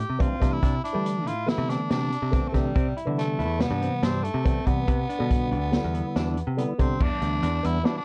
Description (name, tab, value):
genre	progressive instrumental, band music in an uneven meter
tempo	141 BPM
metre	5/4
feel	straight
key	unclear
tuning	A4 = 437 Hz
part	raspy tenor saxophone	melody	0.0-8.0 s	G3 to G4	-33 LUFS	equal	none
part	picked electric bass	bass	0.0-7.8 s	D2 to G3	-30 LUFS	equal	none
part	percussive tonewheel organ	accompaniment	0.2-8.0 s	C3 to E4	-32 LUFS	equal	fast rotary speaker
part	clean electric guitar	arpeggios	0.2-8.0 s	B3 to E4	-37 LUFS	equal	subtle chorus
part	vintage drum kit	drums	0.2-8.0 s	crash cymbal, hi-hat, kick drum, snare drum	-28 LUFS	equal	vintage 12-bit sampler grit
room	little or no reverb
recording	cassette tape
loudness	-25 LUFS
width	mono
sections	0.0-7.0 A section; 7.0-8.0 B section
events	none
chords	0.0 C6; 0.6 Dsus2; 2.8 Am7; 4.9 G; 7.0 Em7